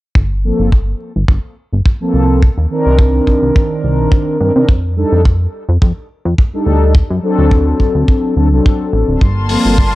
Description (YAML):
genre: nu-disco, nu disco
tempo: 106 BPM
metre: 4/4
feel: swing 54% on 16ths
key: G minor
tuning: A4 = 441 Hz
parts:
  - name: chorused synth bass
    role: bass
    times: 0.2-9.9 s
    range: D1 to C3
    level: -13 LUFS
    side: equal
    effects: tube saturation
  - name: kick drum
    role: drums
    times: 0.2-9.9 s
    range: none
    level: -11 LUFS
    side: equal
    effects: small room reverb
  - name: mellow synth brass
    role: accompaniment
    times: 0.4-9.8 s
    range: Eb3 to Bb4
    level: -14 LUFS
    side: equal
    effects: chorus, sidechain pumping, analog delay
  - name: muted symphonic string section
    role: sustained chords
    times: 9.2-9.9 s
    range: G3 to C6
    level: -18 LUFS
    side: left 1 dB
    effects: sidechain pumping
  - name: hi-hat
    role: drums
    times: 9.5-9.6 s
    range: none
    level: -21 LUFS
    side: left 3 dB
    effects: small room reverb
room: studio reverb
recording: dry, gritty hardware recording, cassette tape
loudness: -11 LUFS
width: side -17 dB against mid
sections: 0.2-9.9 A section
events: filter sweep on analog synth bass 0.2-9.9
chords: 0.2 Gm11; 2.4 Cm9; 4.7 F13; 7.0 D7; 9.2 Gm11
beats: | 0.16 0.72 1.29 1.86 | 2.42 2.99 3.56 4.12 | 4.69 5.25 5.82 6.38 | 6.95 7.52 8.08 8.65 | 9.21 9.78